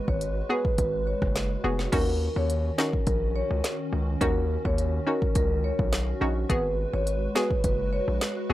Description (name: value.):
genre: dancehall.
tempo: 105 BPM.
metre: 4/4.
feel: straight.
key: Eb minor.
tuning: A4 = 440 Hz.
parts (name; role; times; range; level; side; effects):
hollow square pluck; accompaniment; 0.0-8.5 s; Cb4 to Ab4; -29 LUFS; left 1 dB; chorus.
hollow soft pad; sustained chords; 0.0-8.5 s; Eb3 to Cb5; -35 LUFS; equal; ensemble chorus, sidechain pumping.
marimba with medium mallets; melody; 0.1-8.0 s; Bb4 to Db5; -30 LUFS; equal; tape echo.
hard-hitting 808-style bass; bass; 0.1-8.5 s; F1 to Eb2; -28 LUFS; equal; none.
afro-pop drum kit; drums; 0.1-8.4 s; crash cymbal, hi-hat, kick drum, rim click, snare drum; -28 LUFS; equal; none.
room: little or no reverb.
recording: dry, gritty hardware recording, transformer saturation.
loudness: -24 LUFS.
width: side -15 dB against mid.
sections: 0.0-1.9 A section; 1.9-8.5 A section.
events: none.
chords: 0.0 Abm7; 1.9 Ebm7; 6.5 Abm7.